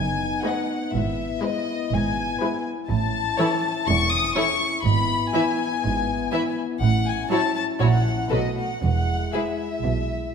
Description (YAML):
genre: quick classical-period movement for symphony orchestra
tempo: 122 BPM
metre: 4/4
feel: straight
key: E major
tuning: A4 = 440 Hz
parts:
  - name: warm chamber violin section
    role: melody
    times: 0.0-10.3 s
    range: D#5 to D#6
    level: -26 LUFS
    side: left 5 dB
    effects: none
  - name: mellow French horn section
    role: sustained chords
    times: 0.0-10.3 s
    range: G#3 to F#4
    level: -29 LUFS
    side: left 4 dB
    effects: none
  - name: rich chamber cello section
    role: bass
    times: 0.0-10.3 s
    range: E2 to B2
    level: -28 LUFS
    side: right 3 dB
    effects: none
  - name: warm studio double bass section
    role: bass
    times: 0.0-10.3 s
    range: E1 to B1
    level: -26 LUFS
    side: right 4 dB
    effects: none
  - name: warm symphonic viola section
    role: accompaniment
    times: 0.4-9.4 s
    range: E3 to F#4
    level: -28 LUFS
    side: right 1 dB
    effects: none
  - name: warm studio violin section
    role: second line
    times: 0.5-9.4 s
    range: F#4 to E5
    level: -31 LUFS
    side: left 2 dB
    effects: none
room: wet scoring stage reverb, RT60 1.6 s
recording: none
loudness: -21 LUFS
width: side -6 dB against mid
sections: 0.0-10.3 A section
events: none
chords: 0.0 B7/F#; 0.9 E/G#; 2.9 A; 4.8 E/G#; 6.8 F#m7/A; 7.8 F#7/A#; 8.3 B7; 8.8 E